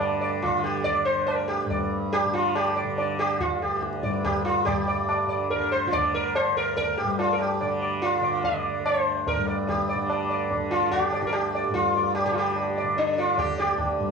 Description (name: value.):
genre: indian classical, Hindustani.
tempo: 144 BPM.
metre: 3/4.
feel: straight.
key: D raga malkauns.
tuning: A4 = 440 Hz.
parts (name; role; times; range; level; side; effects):
sitar; melody; 0.0-14.1 s; D4 to D5; -24 LUFS; right 1 dB; cassette tape.
tanpura; drone; 0.0-14.1 s; D2 to D3; -30 LUFS; equal; cassette tape.
tabla; percussion; 0.0-14.1 s; none; -31 LUFS; left 1 dB; none.
room: moderate spring reverb, RT60 1.2 s, studio reverb.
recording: home recording on cassette.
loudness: -22 LUFS.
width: side -5 dB against mid.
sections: 0.0-4.7 A section; 4.7-14.1 B section.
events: speeding up 0.0-14.1.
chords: none.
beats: 0.00 0.43 | 0.85 1.28 1.71 | 2.13 2.55 2.98 | 3.40 3.82 4.25 | 4.67 5.09 5.51 | 5.93 6.35 6.77 | 7.18 7.60 8.02 | 8.44 8.85 9.27 | 9.68 10.09 10.51 | 10.92 11.33 11.74 | 12.15 12.56 12.97 | 13.38 13.79.